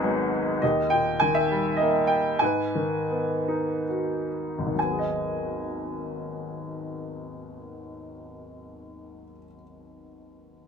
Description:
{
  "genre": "classical, lyrical solo piano",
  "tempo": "62-102 BPM",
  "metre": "3/4",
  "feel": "rubato",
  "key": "G# minor",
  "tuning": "A4 = 440 Hz",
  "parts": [
    { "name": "clear baby grand piano", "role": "solo", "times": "0.0-10.7 s", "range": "G#1 to G#5", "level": "-25 LUFS", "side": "equal", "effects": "none" }
  ],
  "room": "light reverb",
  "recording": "minimal, uncompressed stereo recording",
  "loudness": "-24 LUFS",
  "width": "side -6 dB against mid",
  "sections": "0.6-4.8 A section; 4.8-10.4 B section",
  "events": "slowing down 0.6-4.8",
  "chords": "0.0 G#m7; 0.6 D#; 2.4 G#m7"
}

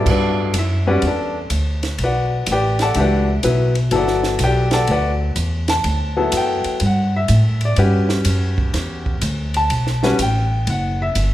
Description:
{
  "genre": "modal jazz",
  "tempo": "124 BPM",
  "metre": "4/4",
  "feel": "swing 67% on 8ths",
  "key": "G lydian",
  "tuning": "A4 = 439 Hz",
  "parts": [
    { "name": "clear baby grand piano", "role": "accompaniment", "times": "0.0-11.3 s", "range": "G2 to A5", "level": "-20 LUFS", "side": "left 2 dB", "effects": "none" },
    { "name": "upright bass", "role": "bass", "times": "0.0-11.3 s", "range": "F#1 to A2", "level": "-18 LUFS", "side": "equal", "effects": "none" },
    { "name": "compact cocktail drum kit", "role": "drums", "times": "0.1-11.3 s", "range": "crash cymbal, hi-hat, kick drum, ride cymbal, snare drum", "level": "-25 LUFS", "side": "right 2 dB", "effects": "none" }
  ],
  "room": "moderate recital hall reverb, RT60 1.4 s",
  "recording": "recorded in a church or concert hall",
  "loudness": "-16 LUFS",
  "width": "side -14 dB against mid",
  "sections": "0.1-11.3 A section",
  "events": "none",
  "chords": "0.1 Gmaj9"
}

